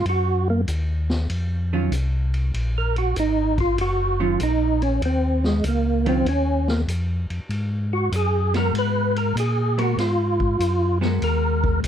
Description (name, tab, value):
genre	soul jazz organ trio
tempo	97 BPM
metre	4/4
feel	swing 68% on 8ths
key	Eb minor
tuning	A4 = 439 Hz
part	percussive tonewheel organ	melody	0.0-11.8 s	Ab3 to Cb5	-22 LUFS	right 2 dB	slow rotary speaker, chorus vibrato
part	mellow tonewheel organ	bass	0.0-11.9 s	Gb1 to Bb2	-22 LUFS	left 1 dB	slow rotary speaker
part	vintage drum kit	drums	0.1-11.9 s	hi-hat, kick drum, ride cymbal, snare drum	-31 LUFS	left 1 dB	none
part	vintage hollow-body jazz guitar	accompaniment	1.7-11.8 s	Eb3 to Bb4	-25 LUFS	equal	none
room	little or no reverb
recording	dark, warm production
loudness	-20 LUFS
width	side -9 dB against mid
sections	0.0-11.9 A section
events	tonewheel organ solo 0.0-11.9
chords	0.0 Ebm9; 7.5 Abm9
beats	| 0.05 0.67 1.29 1.92 | 2.54 3.16 3.78 4.40 | 5.02 5.64 6.26 6.88 | 7.50 8.12 8.74 9.36 | 9.98 10.59 11.21 11.83